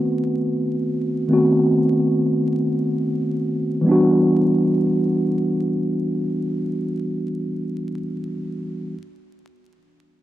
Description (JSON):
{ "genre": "hip hop", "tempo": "free time", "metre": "none", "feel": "none", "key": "E minor", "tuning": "A4 = 440 Hz", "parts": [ { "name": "mellow tine electric piano", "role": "accompaniment", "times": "0.0-9.0 s", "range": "D#3 to F#4", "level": "-18 LUFS", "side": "equal", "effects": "medium stereo tremolo, high-pass filter, low-pass filter" } ], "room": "light reverb", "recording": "vinyl crackle", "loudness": "-18 LUFS", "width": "side -13 dB against mid", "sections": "0.0-3.9 A section; 3.9-6.4 B section", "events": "none", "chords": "0.0 B7b9/D#; 3.9 Em7", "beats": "free time" }